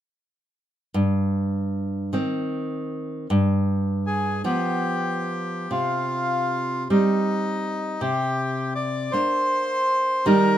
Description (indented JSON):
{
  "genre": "romantic duo for bandoneon and classical guitar",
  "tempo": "45-56 BPM (dotted quarters)",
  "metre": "6/8",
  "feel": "rubato",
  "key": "C minor",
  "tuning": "A4 = 442 Hz",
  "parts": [
    { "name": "nylon-string guitar", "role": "accompaniment", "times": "0.9-10.6 s", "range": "G2 to Eb4", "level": "-23 LUFS", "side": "right 1 dB", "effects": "none" },
    { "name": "bandoneon", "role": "melody", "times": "4.1-10.6 s", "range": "Eb4 to D5", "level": "-24 LUFS", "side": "left 1 dB", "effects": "none" }
  ],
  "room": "moderate studio reverb, RT60 0.7 s",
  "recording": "minimal, uncompressed stereo recording",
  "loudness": "-22 LUFS",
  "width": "side -11 dB against mid",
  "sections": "0.9-5.7 A section; 5.7-10.6 B section",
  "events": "none",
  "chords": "0.9 Cm/G; 3.3 G7; 5.7 Cm; 8.0 Bb/C"
}